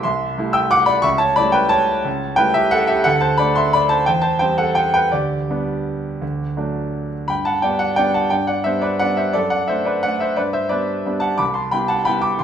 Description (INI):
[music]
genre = classical, piano waltz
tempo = 160-188 BPM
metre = 3/4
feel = rubato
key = G major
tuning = A4 = 437 Hz
[part]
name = clear concert grand piano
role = solo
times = 0.0-12.4 s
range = C2 to E6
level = -16 LUFS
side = equal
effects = none
[sound]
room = moderate recital hall reverb, RT60 1.4 s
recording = minimal, uncompressed stereo recording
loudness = -16 LUFS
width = side -8 dB against mid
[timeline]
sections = 0.0-7.3 A section; 7.3-12.4 B section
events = none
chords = 0.0 Am7/C; 1.1 A7/C#; 3.1 D5; 4.1 C/E; 5.1 G/D; 6.2 D; 7.3 G; 9.4 D/F#; 10.4 G; 11.4 Cmaj7